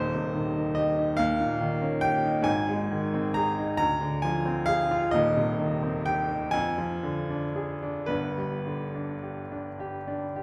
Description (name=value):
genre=classical, romantic nocturne for solo piano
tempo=35-48 BPM (dotted quarters)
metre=6/8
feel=rubato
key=C minor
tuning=A4 = 435 Hz
part: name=clear baby grand piano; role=solo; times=0.0-10.4 s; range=Eb1 to Bb5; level=-28 LUFS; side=equal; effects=none
room=wet recital hall reverb, RT60 1.7 s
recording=heard from further back in the room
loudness=-28 LUFS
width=mono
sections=0.0-10.4 A section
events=none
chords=0.0 Cm/Eb; 1.2 Eb7; 2.5 Ab; 3.8 Dm7b5; 5.1 Cm/Eb; 6.6 Ddim/F; 8.1 G